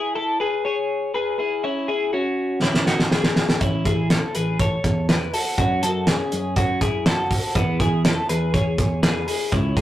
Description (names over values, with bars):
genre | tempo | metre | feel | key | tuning
jangly indie pop | 122 BPM | 4/4 | straight | E major | A4 = 440 Hz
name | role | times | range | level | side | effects
twelve-string electric guitar | arpeggios | 0.0-9.8 s | B3 to C#5 | -23 LUFS | left 2 dB | none
cloth-damped thuddy drum kit | drums | 2.6-9.8 s | hi-hat, kick drum, snare drum | -20 LUFS | equal | none
overdriven tine electric piano | bass | 3.6-9.8 s | A1 to F#2 | -25 LUFS | right 1 dB | phaser
room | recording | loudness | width
moderate small room reverb, RT60 0.6 s | rough rehearsal-room recording, tube saturation | -19 LUFS | side -13 dB against mid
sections
0.0-9.8 A section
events
drum fill 2.6-3.6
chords
0.0 E; 1.6 C#m; 3.6 A; 5.6 F#m; 7.6 E